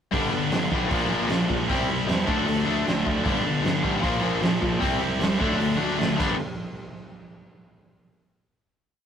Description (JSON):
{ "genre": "punk rock", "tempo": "153 BPM", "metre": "4/4", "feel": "straight", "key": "unclear", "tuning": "A4 = 440 Hz", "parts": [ { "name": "distorted electric guitar", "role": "riff", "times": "0.1-6.3 s", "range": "G2 to E4", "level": "-26 LUFS", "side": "right 1 dB", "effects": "overdrive" }, { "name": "overdriven electric guitar", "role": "riff", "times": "0.1-6.3 s", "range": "G2 to D4", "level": "-28 LUFS", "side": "left 6 dB", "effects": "none" }, { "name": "sludgy distorted guitar", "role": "riff", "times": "0.1-6.4 s", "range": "G2 to D4", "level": "-30 LUFS", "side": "right 2 dB", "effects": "overdrive" }, { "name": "fuzz picked electric bass", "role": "bass", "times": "0.1-6.4 s", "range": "G1 to E2", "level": "-32 LUFS", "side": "right 1 dB", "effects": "overdrive" }, { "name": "raw garage drum kit", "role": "drums", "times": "0.1-6.3 s", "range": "crash cymbal, hi-hat, kick drum, snare drum", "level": "-28 LUFS", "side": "right 2 dB", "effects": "none" } ], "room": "moderate small room reverb, RT60 0.6 s", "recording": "rough rehearsal-room recording, tube saturation", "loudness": "-21 LUFS", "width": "side -8 dB against mid", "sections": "0.1-6.4 verse; 6.4-8.0 final hit", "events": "drum fill 6.2", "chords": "0.1 G; 0.9 Bb; 1.7 C; 2.3 D; 3.3 G; 4.0 Bb; 4.8 C; 5.4 D; 6.2 G; 6.4 N.C." }